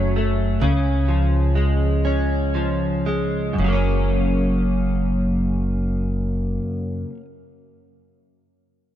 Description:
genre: pop.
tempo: 37-44 BPM (dotted quarters).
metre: 6/8.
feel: straight.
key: unclear.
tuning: A4 = 439 Hz.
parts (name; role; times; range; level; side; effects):
direct-recorded clean electric guitar; accompaniment; 0.0-7.2 s; F#2 to C#4; -21 LUFS; equal; double-tracked left and right.
upright bass; bass; 0.0-6.6 s; F#1 to C#2; -22 LUFS; equal; none.
room: light reverb, small room ambience.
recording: dark, warm production.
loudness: -19 LUFS.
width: side -11 dB against mid.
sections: 0.0-3.6 A section; 3.6-6.8 B section.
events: slowing down 0.0-3.6.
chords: 0.0 F#m; 0.6 C#; 3.6 F#.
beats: | 0.60 2.03 | 3.58 5.18.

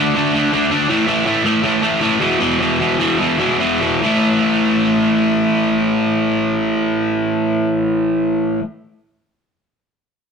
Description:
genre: punk.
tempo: 139-163 BPM.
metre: 4/4.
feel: straight.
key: unclear.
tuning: A4 = 440 Hz.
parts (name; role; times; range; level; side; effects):
distorted electric guitar; solo; 0.0-8.6 s; E2 to D4; -14 LUFS; equal; distortion.
room: moderate stone room reverb, RT60 0.9 s.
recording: rough rehearsal-room recording, tube saturation.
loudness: -14 LUFS.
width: side -6 dB against mid.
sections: 0.0-4.0 A section; 4.0-7.5 B section.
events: slowing down 0.9-4.0.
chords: 0.0 D5; 0.9 A5; 2.2 E5; 4.0 A5.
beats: 0.15 0.52 | 0.89 1.26 1.63 2.01 | 2.39 2.78 3.18 3.60 | 4.02 4.46 4.89 5.32 | 5.75 6.19 6.62 7.05.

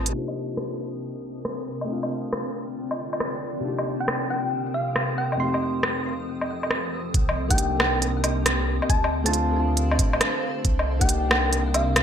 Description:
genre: future garage.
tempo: 137 BPM.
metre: 4/4.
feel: swing 66% on 16ths.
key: C dorian.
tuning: A4 = 437 Hz.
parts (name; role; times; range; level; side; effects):
felt-muted upright piano; accompaniment; 0.0-12.0 s; F2 to Bb4; -30 LUFS; left 2 dB; sidechain pumping, low-pass filter, ping-pong delay.
granular cloud pad; sustained chords; 0.0-12.0 s; C3 to Eb6; -31 LUFS; right 1 dB; built-in reverb, sidechain pumping.
dark detuned saw bass; bass; 0.0-0.1, 7.1-12.0 s; A1 to D2; -26 LUFS; equal; tube saturation, sidechain pumping.
organic electronic drum kit; drums; 0.1-12.0 s; hi-hat, rim click, woodblock; -26 LUFS; equal; low-pass filter on hats, low-pass filter on perc, low-pass filter on snare, low-pass filter on room, gated reverb.
thumb-piano-like synth pluck; melody; 4.0-12.0 s; F5 to C6; -29 LUFS; equal; chorus, ping-pong delay.
electronic kick drum; drums; 7.1-11.1 s; none; -22 LUFS; equal; none.
room: moderate plate reverb, RT60 1.5 s, digital ambience.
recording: bright 1980s-style digital production, low-pass filter.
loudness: -22 LUFS.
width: side -8 dB against mid.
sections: 0.1-7.1 A section; 7.1-12.0 B section.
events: filter sweep on felt piano 0.1-7.1; filter sweep 0.1-7.1.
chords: 0.1 Cm7; 1.9 Dm7; 3.6 Cm7; 5.4 F7; 7.1 Cm7; 8.9 Dm7; 10.6 Cm7.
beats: | 0.14 0.57 1.01 1.45 | 1.89 2.33 2.76 3.20 | 3.64 4.08 4.52 4.95 | 5.39 5.83 6.27 6.71 | 7.14 7.58 8.02 8.46 | 8.90 9.33 9.77 10.21 | 10.65 11.09 11.52 11.96.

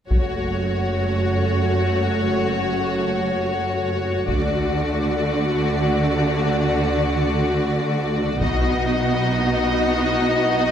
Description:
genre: cinematic, epic orchestral film score.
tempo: free time.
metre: none.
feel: none.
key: F# minor.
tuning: A4 = 441 Hz.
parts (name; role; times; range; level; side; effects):
warm symphonic violin section; second line; 0.1-10.7 s; F#4 to D#5; -23 LUFS; left 4 dB; none.
warm symphonic viola section; accompaniment; 0.1-10.7 s; A3 to F#4; -25 LUFS; right 2 dB; none.
rich symphonic cello section; bass; 0.1-10.7 s; F#2 to D3; -25 LUFS; right 1 dB; none.
rich symphonic double bass section; bass; 0.1-10.7 s; F#1 to D2; -26 LUFS; right 2 dB; none.
taiko ensemble; drums; 0.1-1.1, 4.3-5.3, 8.4-9.4 s; none; -24 LUFS; equal; none.
room: moderate scoring stage reverb, RT60 1.7 s.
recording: none.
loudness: -18 LUFS.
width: side -9 dB against mid.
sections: 0.1-10.7 A section.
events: build-up 0.1-10.7.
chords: 0.1 F#m; 4.3 D; 8.4 B.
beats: free time.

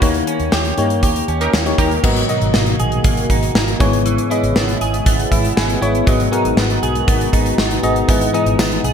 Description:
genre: 1980s-style pop.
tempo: 119 BPM.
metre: 4/4.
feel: straight.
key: unclear.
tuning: A4 = 444 Hz.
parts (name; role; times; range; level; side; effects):
FM electric piano; accompaniment; 0.0-8.9 s; G#2 to G#5; -19 LUFS; left 3 dB; chorus.
direct-recorded clean electric guitar; riff; 0.0-8.9 s; E3 to G#4; -22 LUFS; right 4 dB; analog chorus, digital delay.
vintage muted fingered electric bass; bass; 0.0-8.9 s; G#1 to G2; -21 LUFS; right 1 dB; none.
gated 80s drum kit; drums; 0.0-8.9 s; crash cymbal, hi-hat, kick drum, snare drum, tambourine; -18 LUFS; equal; none.
funky polysynth comp; stabs; 1.4-2.0 s; D#4 to A#4; -26 LUFS; right 3 dB; chorus.
warm analog pad; sustained chords; 2.0-8.9 s; B2 to F#4; -25 LUFS; left 1 dB; chorus.
room: moderate plate reverb, RT60 2.3 s.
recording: bright 1980s-style digital production.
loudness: -14 LUFS.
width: side -7 dB against mid.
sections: 0.0-2.0 A section; 2.0-8.9 B section.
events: FM electric piano fill 5.1-6.1.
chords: 0.0 D#7; 2.0 Bmaj7/G#; 3.8 C#m7/G#; 6.1 G#m7; 8.1 Emaj7/G#.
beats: | 0.02 0.52 1.03 1.53 | 2.04 2.54 3.04 3.55 | 4.05 4.56 5.06 5.57 | 6.07 6.57 7.08 7.58 | 8.09 8.59.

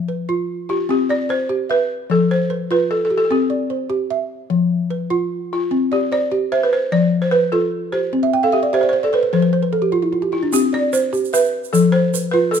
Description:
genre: west african traditional, West African string and xylophone music.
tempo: 100 BPM (dotted quarters).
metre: 12/8.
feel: straight.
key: C major.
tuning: A4 = 440 Hz.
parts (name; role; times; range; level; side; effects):
balafon; melody; 0.0-12.6 s; F4 to D5; -19 LUFS; equal; none.
balafon; arpeggios; 0.0-12.6 s; F3 to G5; -18 LUFS; equal; none.
egg shaker; percussion; 10.5-12.6 s; none; -26 LUFS; right 9 dB; none.
room: moderate recital hall reverb, RT60 1.7 s.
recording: minimal, uncompressed stereo recording.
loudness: -16 LUFS.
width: side -7 dB against mid.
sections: 0.0-10.5 A section; 10.5-12.6 A section.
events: balafon fill 8.2-10.5.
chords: 0.0 G7/F; 0.9 C; 2.1 F5; 3.3 C; 4.5 N.C.; 5.7 C; 6.9 F; 8.1 C5; 9.3 N.C.; 10.5 C; 11.7 F.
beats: 0.29 | 0.90 1.50 2.10 2.70 | 3.31 3.91 4.51 5.11 | 5.72 6.32 6.92 7.52 | 8.13 8.73 9.33 9.93 | 10.53 11.13 11.74 12.34.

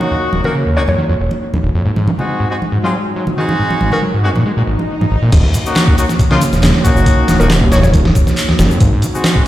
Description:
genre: breakbeat, breaks.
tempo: 138 BPM.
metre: 4/4.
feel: swing 53% on 16ths.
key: Eb dorian.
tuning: A4 = 438 Hz.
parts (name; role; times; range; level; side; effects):
dark analog pad; sustained chords; 0.0-9.5 s; Ab3 to Db5; -23 LUFS; equal; chorus, sidechain pumping.
warm horn section; stabs; 0.0-9.4 s; Ab3 to Gb4; -19 LUFS; left 2 dB; tape echo.
congas; percussion; 0.0-5.1 s; none; -21 LUFS; right 1 dB; none.
overdriven acid bass; riff; 0.1-9.4 s; Eb1 to Ab3; -16 LUFS; equal; distortion, tape echo.
mallet-like synth pluck; melody; 0.5-0.9, 3.9-4.1, 7.4-7.9 s; Bb4 to Db5; -22 LUFS; equal; chorus, AM radio sound, tape echo.
swell; sound effects; 4.6-5.3 s; none; -26 LUFS; equal; none.
detuned saw bass; bass; 5.3-8.9 s; Eb1 to Ab1; -14 LUFS; equal; none.
dusty soul sampler-style drum kit; drums; 5.3-9.5 s; crash cymbal, hi-hat, kick drum, snare drum; -13 LUFS; equal; none.
electronic shaker and handclaps; drums; 5.3-9.3 s; none; -24 LUFS; equal; low-pass filter on perc, low-pass filter on snare, low-pass filter on room.
room: light reverb, digital ambience.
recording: played on a big sound system in a bare room, large studio reverb.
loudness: -11 LUFS.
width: side -14 dB against mid.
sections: 0.0-5.3 A section; 5.3-9.5 B section.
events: swell 4.6-5.3; drop 5.3-9.5.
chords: 0.0 Ebm7; 1.9 Ab7; 5.3 Ebm7; 8.8 Ab7.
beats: | 0.11 0.55 0.98 1.42 | 1.85 2.29 2.72 3.15 | 3.59 4.02 4.46 4.89 | 5.33 5.76 6.20 6.63 | 7.07 7.50 7.94 8.37 | 8.81 9.24.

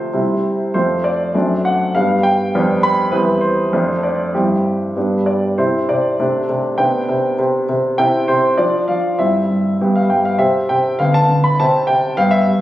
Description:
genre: classical-period piano sonatina.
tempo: 100 BPM.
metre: 2/4.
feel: straight.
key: C major.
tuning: A4 = 440 Hz.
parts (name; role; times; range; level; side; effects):
clear baby grand piano; solo; 0.0-12.6 s; E2 to B5; -14 LUFS; equal; none.
room: moderate recital hall reverb, RT60 1.4 s.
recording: recorded on a phone in the room, studio reverb, compression.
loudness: -14 LUFS.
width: side -14 dB against mid.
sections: 0.0-5.6 A section; 5.6-12.6 B section.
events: none.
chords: 0.1 C; 0.7 F; 1.3 D7/F#; 1.9 G; 2.5 G7/F; 3.1 C/E; 3.7 Dm7/F; 4.3 C/G; 5.0 G; 5.6 C; 6.2 D5/C; 6.8 G/C; 8.0 C; 8.6 Dm/F; 9.2 C/G; 9.8 G; 10.4 C; 11.0 Dm6; 11.6 C5.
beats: 0.13 | 0.74 1.34 | 1.94 2.53 | 3.13 3.73 | 4.34 4.97 | 5.59 6.19 | 6.79 7.38 | 7.98 8.57 | 9.18 9.79 | 10.40 11.00 | 11.59 12.19.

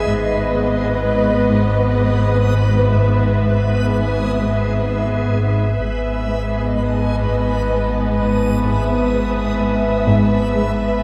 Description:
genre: cinematic, suspense film score.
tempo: 63 BPM.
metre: 3/4.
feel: straight.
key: G# minor.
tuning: A4 = 441 Hz.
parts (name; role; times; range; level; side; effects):
muted studio violin section; melody; 0.0-11.0 s; D#5 to E5; -28 LUFS; equal; none.
muted studio violin section; second line; 0.0-11.0 s; B4; -28 LUFS; equal; none.
muted studio viola section; accompaniment; 0.0-11.0 s; B3; -26 LUFS; equal; none.
backwards swelling texture; sustained chords; 0.0-11.0 s; G#4 to D#6; -30 LUFS; equal; built-in reverb.
muted studio cello section; bass; 0.0-11.0 s; G#2; -25 LUFS; equal; none.
muted studio double bass section; bass; 0.0-11.0 s; G#1; -24 LUFS; equal; none.
sub bass with octave; drone; 0.0-11.0 s; G#1; -27 LUFS; equal; none.
muted studio cello section; riff; 0.1-10.8 s; G#2 to G#3; -27 LUFS; equal; none.
muted studio violin section; texture; 5.8-11.0 s; G#5 to D#6; -36 LUFS; equal; none.
room: moderate scoring stage reverb, RT60 1.8 s.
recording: none.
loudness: -17 LUFS.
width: mono.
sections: 0.0-11.0 A section.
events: none.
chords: 0.1 G#m; 2.9 E/G#; 5.8 G#m.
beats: | 0.09 1.04 1.99 | 2.94 3.89 4.85 | 5.80 6.75 7.70 | 8.66 9.61 10.56.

